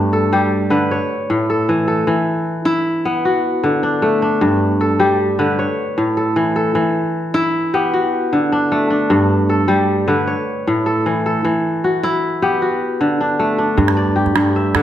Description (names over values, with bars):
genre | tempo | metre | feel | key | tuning
west african traditional, West African string and xylophone music | 103 BPM (dotted quarters) | 12/8 | straight | G lydian | A4 = 440 Hz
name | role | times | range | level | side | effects
kora | arpeggios | 0.0-14.8 s | G2 to E5 | -14 LUFS | equal | none
calabash | percussion | 13.8-14.8 s | none | -20 LUFS | right 5 dB | none
room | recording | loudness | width
wet recital hall reverb, RT60 1.4 s | none | -14 LUFS | side -11 dB against mid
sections
0.0-13.8 A section; 13.8-14.8 B section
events
none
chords
0.0 G; 0.9 A; 2.1 E5; 3.3 D; 4.4 G; 5.6 A; 6.8 Em; 7.9 D; 9.1 G; 10.3 A; 11.4 Em; 12.6 D; 13.8 G5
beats
0.33 0.91 1.50 | 2.08 2.67 3.25 3.84 | 4.42 5.01 5.59 6.18 | 6.76 7.35 7.93 8.52 | 9.11 9.69 10.28 10.86 | 11.45 12.03 12.62 13.20 | 13.78 14.36